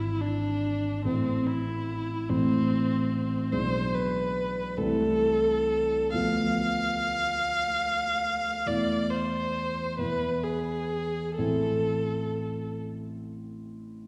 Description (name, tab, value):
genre	classical, romantic duo for viola and grand piano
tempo	42-49 BPM (dotted quarters)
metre	6/8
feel	rubato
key	A minor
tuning	A4 = 440 Hz
part	rich viola	melody	0.0-12.8 s	C4 to F5	-30 LUFS	equal	none
part	dark grand piano	accompaniment	0.0-14.1 s	G#1 to E4	-32 LUFS	equal	none
room	wet scoring stage reverb, RT60 1.8 s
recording	heard from further back in the room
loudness	-28 LUFS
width	mono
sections	0.0-14.1 A section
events	none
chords	0.0 E7/G#; 1.1 Am; 3.5 E7/B; 4.8 Am/C; 6.1 Bdim/D; 8.7 Am/E; 10.0 E; 11.4 Am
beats	| 1.05 2.29 | 3.52 4.77 | 6.13 7.39 | 8.65 9.98 | 11.38 12.81